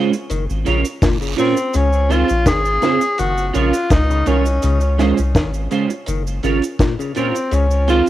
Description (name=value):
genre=roots reggae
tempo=83 BPM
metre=4/4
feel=straight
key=unclear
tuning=A4 = 440 Hz
part: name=clean electric guitar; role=accompaniment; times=0.0-8.1 s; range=Ab3 to Db5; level=-21 LUFS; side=right 7 dB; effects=analog chorus, tape echo
part: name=overdriven clav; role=arpeggios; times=0.0-8.0 s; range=Bb2 to Eb3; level=-26 LUFS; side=left 7 dB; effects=phaser
part: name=deep reggae drum kit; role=drums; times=0.1-8.1 s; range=hi-hat, kick drum, snare drum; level=-18 LUFS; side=equal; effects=cassette tape
part: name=cabasa and guiro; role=percussion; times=0.1-8.1 s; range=none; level=-36 LUFS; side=right 8 dB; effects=none
part: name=soft dub sub bass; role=bass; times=0.3-8.0 s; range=Gb1 to Db2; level=-18 LUFS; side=left 1 dB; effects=none
part: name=warm tenor saxophone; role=melody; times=1.4-8.1 s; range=C4 to Ab4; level=-20 LUFS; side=left 1 dB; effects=tape echo
room=light reverb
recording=home recording on cassette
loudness=-15 LUFS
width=side -14 dB against mid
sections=0.0-8.1 A section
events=none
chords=0.3 Gbmaj7; 1.7 Dbmaj7; 3.2 Gbmaj7; 4.6 Dbmaj7; 6.1 Gbmaj7; 7.5 Dbmaj7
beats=0.30 1.02 | 1.74 2.46 3.19 3.91 | 4.63 5.35 6.08 6.80 | 7.52